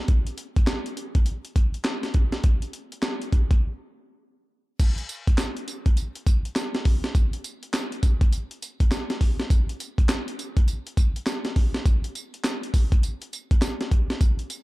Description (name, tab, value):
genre	R&B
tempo	102 BPM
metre	4/4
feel	swing 62% on 16ths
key	none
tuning	none
part	breakbeat sampler-style drum kit	drums	0.1-14.6 s	crash cymbal, handclaps, hi-hat, kick drum, snare drum, tambourine	-21 LUFS	equal	none
room	light reverb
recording	dark, warm production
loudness	-22 LUFS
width	side -20 dB against mid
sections	0.0-4.8 A section; 4.8-14.6 B section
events	break 3.6-4.8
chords	none